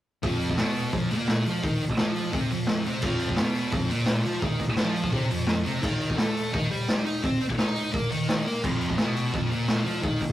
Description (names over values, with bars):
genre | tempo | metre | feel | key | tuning
garage rock duo or trio | 171 BPM | 4/4 | straight | F mixolydian | A4 = 441 Hz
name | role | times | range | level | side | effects
thick fuzz guitar | riff | 0.2-10.2 s | F2 to Eb5 | -27 LUFS | equal | distortion
raw garage drum kit | drums | 0.2-10.3 s | crash cymbal, hi-hat, kick drum, snare drum | -26 LUFS | equal | none
room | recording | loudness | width
light reverb | rough rehearsal-room recording, warm saturation | -24 LUFS | side -13 dB against mid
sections
0.2-10.3 A section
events
none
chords
0.2 F5; 5.8 Eb5; 8.6 Bmaj7#11/E#